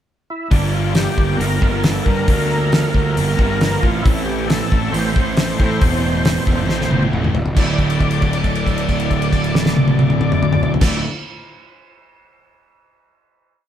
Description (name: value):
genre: classic rock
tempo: 136 BPM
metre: 4/4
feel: straight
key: unclear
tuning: A4 = 439 Hz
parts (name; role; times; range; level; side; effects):
- overdriven tonewheel organ; melody; 0.3-11.0 s; D4 to D5; -24 LUFS; left 1 dB; slow rotary speaker, chorus vibrato
- string machine, violins; sustained chords; 0.5-11.0 s; Bb3 to A4; -34 LUFS; equal; none
- crunchy overdriven guitar; riff; 0.5-11.0 s; D2 to A3; -23 LUFS; right 8 dB; none
- overdriven electric guitar; riff; 0.5-11.0 s; D2 to A4; -25 LUFS; left 7 dB; none
- fuzz fingered electric bass; bass; 0.5-11.0 s; D1 to A2; -21 LUFS; equal; overdrive
- damped 70s drum kit; drums; 0.5-10.9 s; crash cymbal, hi-hat, kick drum, snare drum, toms; -18 LUFS; equal; none
room: moderate stone room reverb, RT60 1.3 s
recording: band playing live in one room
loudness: -14 LUFS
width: side -10 dB against mid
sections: 0.0-0.5 pickup bar; 0.5-7.6 pre-chorus; 7.6-11.1 final chord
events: drum fill 6.7-7.6; held note 7.6-10.8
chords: 0.0 N.C.; 0.5 Gm; 3.8 Am; 7.6 Dsus2